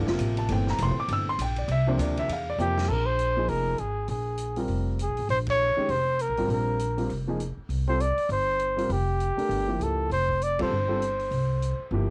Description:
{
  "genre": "modal jazz",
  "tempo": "199 BPM",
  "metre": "4/4",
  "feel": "swing 60% on 8ths",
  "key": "unclear",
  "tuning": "A4 = 440 Hz",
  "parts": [
    { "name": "dark grand piano", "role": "accompaniment", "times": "0.0-12.1 s", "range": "Bb2 to E6", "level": "-32 LUFS", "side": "equal", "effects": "none" },
    { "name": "upright bass", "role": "bass", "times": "0.0-12.1 s", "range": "F1 to F2", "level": "-31 LUFS", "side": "equal", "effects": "none" },
    { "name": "vintage drum kit", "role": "drums", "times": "0.1-11.7 s", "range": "crash cymbal, hi-hat, kick drum, ride cymbal, snare drum", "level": "-44 LUFS", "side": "equal", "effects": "cassette tape" },
    { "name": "breathy trumpet", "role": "melody", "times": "2.6-11.9 s", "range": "G4 to D5", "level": "-29 LUFS", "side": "equal", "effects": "cassette tape" }
  ],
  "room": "light reverb",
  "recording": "home recording on cassette",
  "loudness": "-27 LUFS",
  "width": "mono",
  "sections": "0.0-2.9 A section; 2.9-12.1 B section",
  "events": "drum fill 2.6-2.9; band accent 5.4, 10.6",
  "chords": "0.0 C9sus4; 2.9 Bb9sus4; 7.7 C7sus4"
}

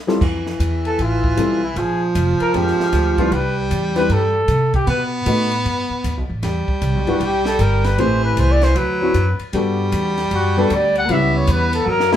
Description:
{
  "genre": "jazz, small-group swing and bop",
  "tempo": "154 BPM",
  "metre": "4/4",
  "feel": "swing 65% on 8ths",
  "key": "unclear",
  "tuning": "A4 = 440 Hz",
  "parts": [
    { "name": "warm baby grand piano", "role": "accompaniment", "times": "0.1-12.2 s", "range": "F#3 to B4", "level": "-21 LUFS", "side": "left 2 dB", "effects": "none" },
    { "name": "compact cocktail drum kit", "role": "drums", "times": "0.1-12.2 s", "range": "crash cymbal, hi-hat, kick drum, ride cymbal, snare drum", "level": "-27 LUFS", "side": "equal", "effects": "none" },
    { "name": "breathy baritone saxophone", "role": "second line", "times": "0.2-12.2 s", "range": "E3 to B3", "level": "-21 LUFS", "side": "right 1 dB", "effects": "none" },
    { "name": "upright bass", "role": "bass", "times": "0.2-12.2 s", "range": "F1 to C3", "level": "-20 LUFS", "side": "equal", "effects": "none" },
    { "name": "mellow trumpet", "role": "melody", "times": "0.9-12.2 s", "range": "E4 to F#5", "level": "-20 LUFS", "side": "equal", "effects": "none" }
  ],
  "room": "wet studio ambience, RT60 0.5 s",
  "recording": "heard from further back in the room",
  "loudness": "-16 LUFS",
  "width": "side -10 dB against mid",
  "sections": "0.2-12.2 A section",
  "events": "drum fill 11.9",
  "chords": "0.2 Fmaj9; 1.8 Bb9; 3.3 Cmaj7; 4.9 B7; 6.4 Em; 8.0 Am7; 8.8 D7; 9.5 Gmaj9; 11.1 C#m7b5"
}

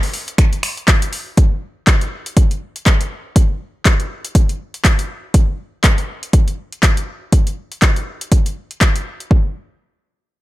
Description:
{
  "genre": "house",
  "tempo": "121 BPM",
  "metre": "4/4",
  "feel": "swing 58% on 16ths",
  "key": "none",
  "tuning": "none",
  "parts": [
    { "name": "deep house drum kit", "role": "drums", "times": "0.0-9.3 s", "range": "finger snaps, handclaps, hi-hat", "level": "-20 LUFS", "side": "left 1 dB", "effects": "overdrive" },
    { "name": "electronic kick drum", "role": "drums", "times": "0.4-9.4 s", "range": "none", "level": "-13 LUFS", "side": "equal", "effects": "overdrive" }
  ],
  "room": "little or no reverb",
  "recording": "none",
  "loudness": "-14 LUFS",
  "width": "side -17 dB against mid",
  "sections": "0.0-9.3 A section; 9.3-10.4 B section",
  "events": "none",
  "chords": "none"
}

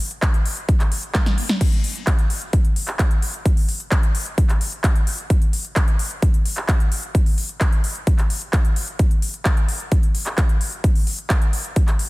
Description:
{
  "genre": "EDM",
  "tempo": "130 BPM",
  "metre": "4/4",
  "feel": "straight",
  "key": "none",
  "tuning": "none",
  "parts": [
    { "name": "big-room dance drum kit", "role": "drums", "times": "0.1-12.1 s", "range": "crash cymbal, handclaps, hi-hat, snare drum", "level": "-25 LUFS", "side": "equal", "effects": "overdrive, studio reverb" },
    { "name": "electronic kick drum", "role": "drums", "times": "0.2-11.9 s", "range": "none", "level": "-17 LUFS", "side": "equal", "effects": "overdrive, studio reverb" }
  ],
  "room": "digital ambience",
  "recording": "dense, heavily limited modern master",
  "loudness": "-17 LUFS",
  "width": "side -21 dB against mid",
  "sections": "0.0-1.6 A section; 1.6-12.1 A section",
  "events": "drop 0.0-1.6, 1.6-12.1; drum fill 1.1-1.6",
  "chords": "none"
}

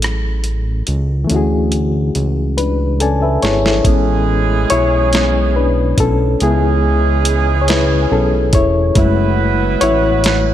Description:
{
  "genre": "slow six-eight R&B",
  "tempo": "47 BPM (dotted quarters)",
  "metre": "6/8",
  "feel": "straight",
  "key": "unclear",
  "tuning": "A4 = 438 Hz",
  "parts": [
    { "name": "bright reed electric piano", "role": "accompaniment", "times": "0.0-10.5 s", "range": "E3 to A5", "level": "-16 LUFS", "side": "left 3 dB", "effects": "fast tremolo" },
    { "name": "fat analog bass", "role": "bass", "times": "0.0-10.5 s", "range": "E1 to D2", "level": "-16 LUFS", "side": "right 1 dB", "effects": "none" },
    { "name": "dusty soul sampler-style drum kit", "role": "drums", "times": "0.0-10.4 s", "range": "hi-hat, kick drum, rim click, snare drum", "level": "-18 LUFS", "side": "right 1 dB", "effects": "none" },
    { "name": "warm horn section", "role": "stabs", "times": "3.8-10.5 s", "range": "E3 to B4", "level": "-20 LUFS", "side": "right 8 dB", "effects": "none" }
  ],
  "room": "moderate plate reverb, RT60 2.5 s",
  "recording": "dreamy mix soaked in reverb",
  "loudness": "-12 LUFS",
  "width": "side -11 dB against mid",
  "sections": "0.0-3.8 A section; 3.8-10.5 B section",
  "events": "drum fill 2.6-3.8; reed electric piano fill 2.6-3.8; reed electric piano solo 3.8-10.5",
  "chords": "0.0 F#m7; 1.3 Dmaj9#11; 3.8 Amaj9; 6.4 C#m7; 9.0 F#m7"
}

